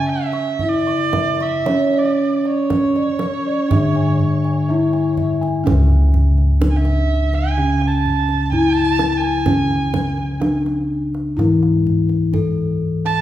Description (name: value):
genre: Javanese gamelan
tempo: 55-63 BPM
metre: 4/4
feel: straight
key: C# pelog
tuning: A4 = 443 Hz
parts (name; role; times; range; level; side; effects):
- gamelan-type bronze metallophone; melody; 0.0-13.2 s; C#4 to C#5; -21 LUFS; left 1 dB; none
- warm erhu; second line; 0.0-13.2 s; C#5 to A5; -23 LUFS; right 5 dB; none
- gamelan-type bronze metallophone; accompaniment; 0.0-13.2 s; C#3 to C#4; -21 LUFS; left 1 dB; none
- gamelan-type bossed gongs; arpeggios; 0.0-5.7 s; C#5 to C#6; -27 LUFS; right 1 dB; none
- gamelan-type bossed gongs; bass; 0.0-13.2 s; C#2 to C#5; -20 LUFS; equal; none
- kendang; percussion; 0.3-13.2 s; none; -25 LUFS; right 2 dB; none
room: wet recital hall reverb, RT60 1.6 s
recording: recorded in a church or concert hall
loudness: -15 LUFS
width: side -12 dB against mid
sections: 0.0-5.7 A section; 5.7-13.2 B section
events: none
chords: none